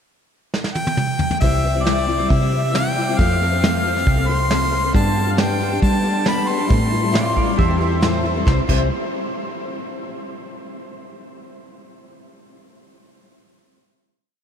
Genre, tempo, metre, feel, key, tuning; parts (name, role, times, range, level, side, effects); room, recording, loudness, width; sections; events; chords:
folk rock and heartland rock; 136 BPM; 4/4; straight; C major; A4 = 442 Hz
soft brush drum kit; drums; 0.5-8.8 s; crash cymbal, hi-hat, kick drum, snare drum, toms; -22 LUFS; right 1 dB
clear harmonica; melody; 0.7-8.0 s; D5 to C6; -23 LUFS; equal; ping-pong delay
picked steel-string acoustic guitar; accompaniment; 1.4-8.9 s; A2 to C5; -23 LUFS; left 4 dB; wide subtle chorus
hollow-body short-scale fingered electric bass; bass; 1.4-8.9 s; C2 to G3; -21 LUFS; equal
pedal steel guitar; second line; 7.1-8.9 s; F4 to E5; -29 LUFS; right 2 dB; analog chorus, ping-pong delay
moderate huge ambient reverb, RT60 8.2 s; dreamy mix soaked in reverb; -16 LUFS; side -8 dB against mid
0.0-1.4 pickup bar; 1.4-8.5 verse; 8.5-10.2 final chord
drum fill 0.5-1.4
0.0 N.C.; 1.4 C; 3.2 F; 4.9 Gadd9; 6.7 Am7; 8.5 C